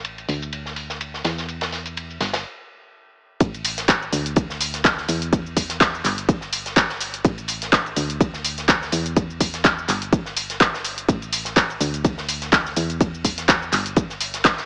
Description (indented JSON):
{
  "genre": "piano house",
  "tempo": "125 BPM",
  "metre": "4/4",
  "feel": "swing 55% on 16ths",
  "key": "unclear",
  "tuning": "A4 = 440 Hz",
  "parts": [
    { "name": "solid FM bass", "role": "bass", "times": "0.0-14.7 s", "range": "G1 to E2", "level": "-32 LUFS", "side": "equal", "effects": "sidechain pumping" },
    { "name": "natural country drum kit", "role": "drums", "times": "0.0-14.7 s", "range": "ride cymbal, snare drum", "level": "-33 LUFS", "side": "equal", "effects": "sidechain pumping on cymbals, high-pass filter on cymbals, low-pass filter on cymbals, high-pass filter on snare, low-pass filter on snare, high-pass filter on room, low-pass filter on room" },
    { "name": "punchy analog drum machine", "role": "drums", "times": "0.1-14.7 s", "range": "handclaps, hi-hat, shaker", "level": "-24 LUFS", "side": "equal", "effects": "low-pass filter on hats, low-pass filter on perc, low-pass filter on snare, low-pass filter on room" },
    { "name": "electronic kick drum", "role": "drums", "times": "3.4-14.6 s", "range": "none", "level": "-22 LUFS", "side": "equal", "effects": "none" }
  ],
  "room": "light reverb",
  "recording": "small speaker sound",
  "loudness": "-22 LUFS",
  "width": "mono",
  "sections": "0.0-3.4 A section; 3.4-14.7 B section",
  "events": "stop 2.4-3.4; drop 3.4-14.7",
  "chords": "none"
}